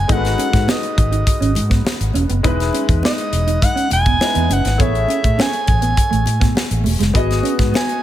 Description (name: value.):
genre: polished 1980s jazz-funk pop.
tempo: 102 BPM.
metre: 4/4.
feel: straight.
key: E major.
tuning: A4 = 440 Hz.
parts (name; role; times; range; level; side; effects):
breathy soprano saxophone; melody; 0.0-8.0 s; D#5 to G#5; -21 LUFS; right 2 dB; none.
clear concert grand piano; accompaniment; 0.0-8.0 s; G#3 to D#5; -23 LUFS; left 5 dB; lush chorus.
vintage muted fingered electric bass; bass; 0.0-7.7 s; E1 to A2; -18 LUFS; equal; none.
mellow electric guitar; riff; 0.1-7.9 s; G#3 to D#4; -24 LUFS; right 6 dB; lush chorus.
tight funk drum kit; drums; 0.1-8.0 s; hi-hat, kick drum, snare drum; -18 LUFS; equal; gated reverb.
congas; percussion; 0.4-7.9 s; none; -33 LUFS; left 1 dB; none.
room: studio ambience.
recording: none.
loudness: -14 LUFS.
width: side -12 dB against mid.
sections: 0.0-8.0 A section.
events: none.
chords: 0.0 G#m7; 2.5 Emaj7; 4.8 Amaj7; 7.2 Emaj7 (rootless).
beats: | 0.10 0.69 1.27 1.86 | 2.45 3.04 3.63 4.21 | 4.80 5.39 5.98 6.57 | 7.15 7.74.